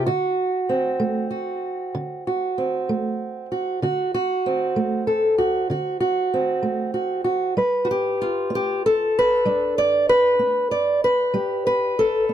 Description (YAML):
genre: acoustic country blues, solo or duo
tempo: 64 BPM (dotted quarters)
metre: 12/8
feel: straight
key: D mixolydian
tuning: A4 = 440 Hz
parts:
  - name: fingerpicked old ladder-braced acoustic guitar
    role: solo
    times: 0.0-12.3 s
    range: D3 to D5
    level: -19 LUFS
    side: right 1 dB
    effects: none
room: light reverb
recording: dark, warm production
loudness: -19 LUFS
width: side -10 dB against mid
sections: 0.0-12.3 A section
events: none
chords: 0.1 D7; 7.6 G7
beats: | 0.07 1.01 1.95 2.89 | 3.83 4.77 5.71 6.64 | 7.58 8.52 9.46 10.40 | 11.34 12.29